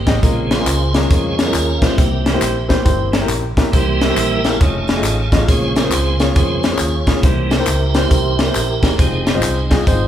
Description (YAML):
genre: uptempo gospel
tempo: 137 BPM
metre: 4/4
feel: swing 63% on 8ths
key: unclear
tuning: A4 = 436 Hz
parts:
  - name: tonewheel organ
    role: sustained chords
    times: 0.0-10.1 s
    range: Db3 to F5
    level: -21 LUFS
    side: right 3 dB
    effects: slow rotary speaker, overdrive
  - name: vintage muted fingered electric bass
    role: bass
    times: 0.0-10.1 s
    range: E1 to F2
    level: -20 LUFS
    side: equal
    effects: none
  - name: warm baby grand piano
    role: accompaniment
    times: 0.1-10.1 s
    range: Bb2 to Eb5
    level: -21 LUFS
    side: left 2 dB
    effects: none
  - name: crisp fusion drum kit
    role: drums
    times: 0.1-10.0 s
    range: hi-hat, kick drum, snare drum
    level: -16 LUFS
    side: equal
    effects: none
  - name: tambourine and handclaps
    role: percussion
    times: 0.1-10.0 s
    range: none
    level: -28 LUFS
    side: left 2 dB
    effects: none
room: moderate large studio reverb, RT60 1.3 s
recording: band playing live in one room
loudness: -13 LUFS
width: side -10 dB against mid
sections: 0.0-10.1 A section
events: tonewheel organ solo 0.0-10.1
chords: 0.2 Bbm7; 2.0 C7; 4.6 F7alt; 5.5 Bbm7; 7.2 C7; 9.0 Fm7